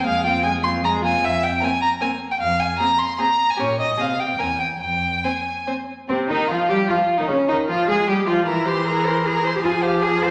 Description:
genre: quick classical-period movement for string quartet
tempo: 153 BPM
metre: 3/4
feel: rubato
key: F minor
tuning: A4 = 439 Hz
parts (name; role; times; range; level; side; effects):
- clear violin; melody; 0.0-10.3 s; C4 to C6; -24 LUFS; equal; none
- warm violin; second line; 0.0-10.3 s; C4 to C5; -28 LUFS; equal; none
- rich viola; accompaniment; 0.0-10.3 s; C3 to Db4; -27 LUFS; equal; none
- warm cello; bass; 0.0-10.3 s; E2 to C5; -28 LUFS; equal; none
room: wet recital hall reverb, RT60 1.3 s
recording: none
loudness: -21 LUFS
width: mono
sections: 0.0-6.1 A section; 6.1-10.3 A section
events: none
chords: 0.1 Fm; 1.2 Fmadd11; 3.6 Gdim/Bb (rootless); 4.0 F5/C; 4.4 C/E; 4.8 Fm; 6.1 F5/C; 7.3 Dbadd9; 8.5 C7/E; 9.6 Fm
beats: | 0.06 0.45 0.84 | 1.23 1.62 2.01 | 2.40 2.79 3.18 | 3.58 3.98 4.38 | 4.80 5.24 5.67 | 6.09 6.49 6.89 | 7.29 7.68 8.08 | 8.47 8.87 9.26 | 9.64 10.03

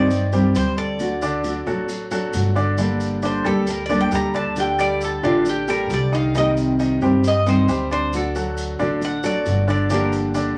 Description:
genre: latin, Cuban son and guajira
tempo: 134 BPM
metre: 4/4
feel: straight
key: G minor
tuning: A4 = 440 Hz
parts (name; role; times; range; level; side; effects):
- Cuban tres; melody; 0.0-10.1 s; F4 to Bb5; -26 LUFS; equal; none
- nylon-string guitar; accompaniment; 0.0-10.6 s; C3 to A4; -25 LUFS; equal; none
- clear grand piano; arpeggios; 0.0-10.5 s; D3 to Eb5; -26 LUFS; equal; none
- upright bass; bass; 0.0-10.5 s; G1 to G2; -27 LUFS; equal; none
- maracas; percussion; 0.1-10.6 s; none; -40 LUFS; equal; none
room: wet club reverb, RT60 0.5 s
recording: none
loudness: -20 LUFS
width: mono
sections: 0.0-2.8 A section; 2.8-10.6 B section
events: Cuban tres solo 2.8-10.6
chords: 0.0 Cm; 1.0 D; 2.8 Gmadd9; 4.6 Dsus4; 6.4 Cm; 8.1 D; 9.9 Gm7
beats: 0.10 0.55 | 1.00 1.44 1.89 2.33 | 2.78 3.23 3.67 4.12 | 4.57 5.01 5.46 5.91 | 6.35 6.80 7.24 7.69 | 8.13 8.58 9.02 9.46 | 9.91 10.35

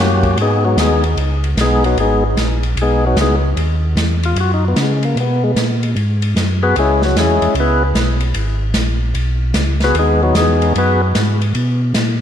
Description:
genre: soul jazz organ trio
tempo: 150 BPM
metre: 4/4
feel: swing 65% on 8ths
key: G# minor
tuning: A4 = 440 Hz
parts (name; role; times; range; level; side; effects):
- percussive tonewheel organ; melody; 0.0-11.0 s; F#3 to B4; -16 LUFS; left 2 dB; slow rotary speaker, overdrive, analog delay
- mellow tonewheel organ; bass; 0.0-12.2 s; G#1 to C#3; -16 LUFS; equal; slow rotary speaker
- open jazz drum kit; drums; 0.2-12.1 s; hi-hat, kick drum, ride cymbal, snare drum; -21 LUFS; equal; none
room: moderate lush hall reverb, RT60 1.7 s, small room reverb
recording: dreamy mix soaked in reverb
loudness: -13 LUFS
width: side -9 dB against mid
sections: 0.4-12.2 A section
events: tonewheel organ solo 0.4-12.2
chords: 0.4 G#m7; 6.8 C#m7; 8.4 G#m7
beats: | 0.38 0.78 1.18 1.57 | 1.97 2.37 2.77 3.17 | 3.57 3.97 4.37 4.77 | 5.17 5.56 5.96 6.36 | 6.76 7.16 7.56 7.96 | 8.35 8.75 9.15 9.55 | 9.95 10.35 10.74 11.14 | 11.54 11.94

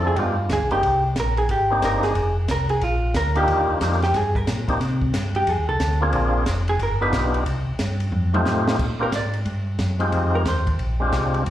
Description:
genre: soul jazz organ trio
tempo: 181 BPM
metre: 4/4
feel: swing 64% on 8ths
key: Bb mixolydian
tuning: A4 = 440 Hz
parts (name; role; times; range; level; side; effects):
- percussive tonewheel organ; melody; 0.0-11.4 s; F3 to A4; -24 LUFS; left 1 dB; slow rotary speaker, slapback echo
- vintage hollow-body jazz guitar; accompaniment; 0.0-10.7 s; F4 to D5; -23 LUFS; right 1 dB; slapback echo
- mellow tonewheel organ; bass; 0.0-11.5 s; F1 to C3; -23 LUFS; equal; overdrive, chorus vibrato, slow rotary speaker
- compact cocktail drum kit; drums; 0.2-11.5 s; crash cymbal, hi-hat, kick drum, ride cymbal, snare drum, toms; -29 LUFS; equal; none
room: moderate digital room reverb, RT60 1.0 s, small room ambience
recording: live gig heard through the venue's PA, club reverb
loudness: -19 LUFS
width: side -12 dB against mid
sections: 0.0-8.8 A section; 8.8-11.5 A section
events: hollow-body jazz guitar solo 0.0-11.5; drum fill 8.1-8.8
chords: 0.2 G7b9; 0.8 Cm9; 2.2 F5; 2.8 Bb6; 3.5 Ebmaj9; 4.8 C5; 5.5 F6; 6.1 Bb9; 6.8 G7b13; 7.5 C5; 8.1 F7; 8.8 Bb69; 10.1 Fm9; 10.8 Bb13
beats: 0.17 0.50 | 0.83 1.16 1.49 1.82 | 2.15 2.49 2.82 3.15 | 3.48 3.81 4.14 4.47 | 4.81 5.14 5.47 5.80 | 6.13 6.47 6.80 7.13 | 7.46 7.79 8.13 8.46 | 8.79 9.13 9.46 9.79 | 10.13 10.46 10.79 11.13 | 11.46

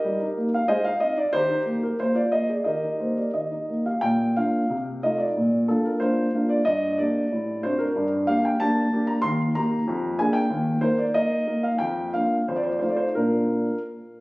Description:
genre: classical-period piano sonatina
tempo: 85-95 BPM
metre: 2/4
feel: rubato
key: Eb major, Bb major from 4.0 s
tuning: A4 = 440 Hz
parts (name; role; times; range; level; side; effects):
- warm concert grand piano; solo; 0.0-13.8 s; Eb2 to C6; -21 LUFS; equal; none
room: moderate recital hall reverb, RT60 1.7 s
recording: recorded on a phone in the room, club reverb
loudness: -21 LUFS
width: side -22 dB against mid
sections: 0.0-4.0 A section; 4.0-14.2 B section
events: none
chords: 0.0 Eb/G; 0.7 Ab; 1.3 Eb; 2.0 Bb5; 2.6 Eb; 4.0 Bb; 4.7 F7/C; 5.4 Bb; 6.7 Gm; 7.3 D7/A; 8.0 Gm; 9.2 Eb; 9.9 Bb7/F; 10.5 Eb5; 11.8 Bb/F; 12.5 F7; 13.2 Bb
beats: | 0.02 0.68 | 1.32 1.97 | 2.65 3.33 | 4.02 4.69 | 5.35 6.02 | 6.67 7.32 | 7.95 8.59 | 9.22 9.86 | 10.50 11.15 | 11.80 12.47 | 13.15

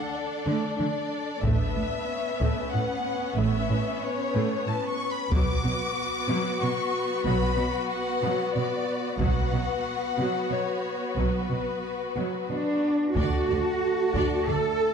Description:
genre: cinematic, epic orchestral film score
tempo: 92 BPM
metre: 3/4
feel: straight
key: B minor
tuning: A4 = 440 Hz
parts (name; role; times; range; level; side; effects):
- rich studio violin section; melody; 0.0-14.9 s; B4 to D6; -32 LUFS; left 3 dB; none
- clear symphonic violin section; second line; 0.0-14.6 s; C#4 to D5; -31 LUFS; left 4 dB; none
- clear symphonic viola section; accompaniment; 0.0-14.6 s; F#3 to D4; -33 LUFS; right 2 dB; none
- warm studio cello section; bass; 0.5-14.9 s; A2 to A4; -29 LUFS; right 2 dB; none
- clear symphonic double bass section; bass; 1.4-14.6 s; A1 to D2; -30 LUFS; right 3 dB; none
- taiko ensemble; drums; 1.4-14.4 s; none; -29 LUFS; equal; none
- dark French horn section; sustained chords; 13.2-14.9 s; A3 to A4; -30 LUFS; right 2 dB; none
room: moderate scoring stage reverb, RT60 1.7 s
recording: dark, warm production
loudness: -24 LUFS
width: side -6 dB against mid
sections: 0.0-13.2 A section; 13.2-14.9 A section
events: none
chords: 0.0 D5; 1.4 Aadd9; 5.3 Bm; 13.2 D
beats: 0.14 0.79 | 1.44 2.08 2.73 | 3.38 4.02 4.67 | 5.32 5.96 6.61 | 7.26 7.91 8.55 | 9.20 9.86 10.52 | 11.18 11.84 12.51 | 13.17 13.82 14.47

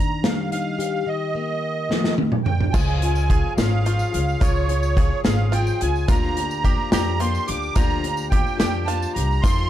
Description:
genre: indie folk with a building arrangement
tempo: 72 BPM (dotted quarters)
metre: 6/8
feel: straight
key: Bb major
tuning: A4 = 444 Hz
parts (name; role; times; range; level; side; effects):
- musette accordion; melody; 0.0-9.7 s; Db5 to D6; -27 LUFS; right 4 dB; none
- fingerpicked plugged-in steel-string acoustic guitar; accompaniment; 0.0-2.7 s; D3 to G4; -26 LUFS; left 4 dB; none
- loose indie drum kit; drums; 0.2-9.6 s; crash cymbal, hi-hat, kick drum, snare drum, toms; -21 LUFS; equal; none
- picked swing-style acoustic guitar; accompaniment; 2.7-9.7 s; Db3 to Bb4; -28 LUFS; left 8 dB; none
- bluegrass banjo; arpeggios; 2.7-9.7 s; F4 to Ab4; -32 LUFS; right 8 dB; tape echo
- upright bass; bass; 2.7-9.7 s; Ab1 to F2; -23 LUFS; equal; none
- tambourine; percussion; 2.7-9.7 s; none; -41 LUFS; left 9 dB; none
room: small room ambience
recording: dark, warm production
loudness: -19 LUFS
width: side -12 dB against mid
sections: 0.0-2.7 A section; 2.7-9.7 B section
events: drum fill 1.9-2.7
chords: 0.0 Ebmaj7; 2.7 Db; 6.1 Bb6/D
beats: 0.24 | 1.07 1.91 | 2.75 3.58 | 4.42 5.25 | 6.09 6.93 | 7.76 8.60 | 9.44

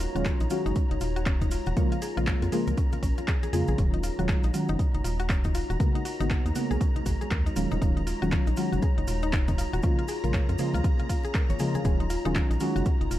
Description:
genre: deep house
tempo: 119 BPM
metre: 4/4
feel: swing 61% on 16ths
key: Eb minor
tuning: A4 = 440 Hz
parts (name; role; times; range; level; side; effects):
- warbly tape-like pad; sustained chords; 0.0-13.2 s; Ab3 to Db5; -37 LUFS; left 1 dB; chorus, built-in reverb, sidechain pumping
- mallet-like synth pluck; arpeggios; 0.0-13.2 s; Db4 to Db5; -36 LUFS; left 4 dB; chorus, cassette tape, sidechain pumping, tape echo
- organ-like FM bass; bass; 0.0-13.2 s; Eb1 to F2; -29 LUFS; equal; tube saturation, sidechain pumping
- deep house drum kit; drums; 0.0-13.2 s; handclaps, hi-hat; -37 LUFS; equal; studio ambience
- cabasa; percussion; 0.0-13.2 s; none; -46 LUFS; right 4 dB; none
- soft string machine; texture; 0.0-13.2 s; Bb5; -41 LUFS; equal; ensemble chorus, sidechain pumping
- deep mellow chord stab; stabs; 0.1-12.9 s; Db3 to Gb4; -30 LUFS; equal; chorus, phaser, sidechain pumping, tape echo
- electronic kick drum; drums; 0.3-13.0 s; none; -26 LUFS; equal; studio ambience
- congas; percussion; 0.4-12.8 s; none; -38 LUFS; equal; none
room: little or no reverb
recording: none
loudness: -24 LUFS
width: side -14 dB against mid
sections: 0.0-13.2 A section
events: none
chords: 0.0 Ebm11; 1.8 Bbm7; 3.8 Ebm11; 5.8 Abm11; 7.6 Ebm11; 9.8 Bbm7; 11.8 Ebm11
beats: 0.25 0.76 1.26 | 1.77 2.27 2.77 3.28 | 3.78 4.29 4.79 5.30 | 5.80 6.30 6.81 7.31 | 7.82 8.32 8.82 9.33 | 9.83 10.34 10.84 11.35 | 11.85 12.35 12.86

